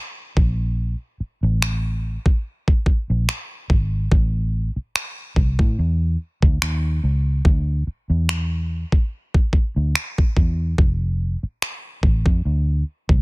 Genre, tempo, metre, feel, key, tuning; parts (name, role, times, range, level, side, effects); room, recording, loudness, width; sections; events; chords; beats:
contemporary R&B; 72 BPM; 4/4; swing 54% on 16ths; A4 = 440 Hz
vintage muted fingered electric bass; bass; 0.4-13.2 s; F1 to A2; -20 LUFS; equal
smooth R&B drum kit; drums; 0.4-13.2 s; finger snaps, kick drum; -18 LUFS; equal; soft clipping on snare
little or no reverb; dense, heavily limited modern master; -18 LUFS; side -25 dB against mid
0.0-13.2 A section
| 0.78 1.62 2.45 3.28 | 4.12 4.95 5.78 6.62 | 7.45 8.28 9.12 9.95 | 10.78 11.62 12.45